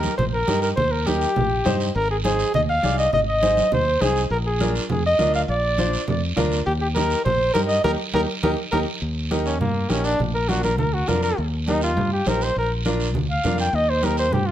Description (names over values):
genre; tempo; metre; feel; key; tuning
latin, cumbia; 204 BPM; 4/4; straight; Eb major; A4 = 439 Hz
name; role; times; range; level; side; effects
warm flugelhorn; melody; 0.0-14.5 s; Bb3 to G5; -22 LUFS; equal; slapback echo
clear upright piano; accompaniment; 0.0-14.2 s; D4 to D5; -26 LUFS; equal; none
fingered electric bass; bass; 0.0-14.5 s; Ab1 to G2; -24 LUFS; equal; none
congas; percussion; 0.0-14.5 s; none; -28 LUFS; right 2 dB; none
guiro; percussion; 0.0-14.5 s; none; -33 LUFS; right 5 dB; none
room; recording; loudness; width
moderate studio reverb, RT60 0.8 s; none; -19 LUFS; side -11 dB against mid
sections
0.0-9.0 A section; 9.0-14.5 B section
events
band accent 7.8-9.0; drum fill 8.4-9.0; flugelhorn solo 9.0-14.5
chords
0.0 Eb; 2.0 Ab; 4.3 Bb; 6.7 Eb; 10.2 Bb; 11.4 Eb; 12.6 Bb; 13.7 Eb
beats
0.19 0.48 | 0.78 1.07 1.36 1.66 | 1.95 2.25 2.54 2.84 | 3.13 3.43 3.72 4.01 | 4.31 4.60 4.90 5.19 | 5.49 5.78 6.08 6.37 | 6.67 6.96 7.25 7.55 | 7.84 8.14 8.43 8.72 | 9.02 9.31 9.61 9.90 | 10.20 10.49 10.79 11.08 | 11.38 11.67 11.97 12.26 | 12.56 12.85 13.15 13.44 | 13.73 14.03 14.32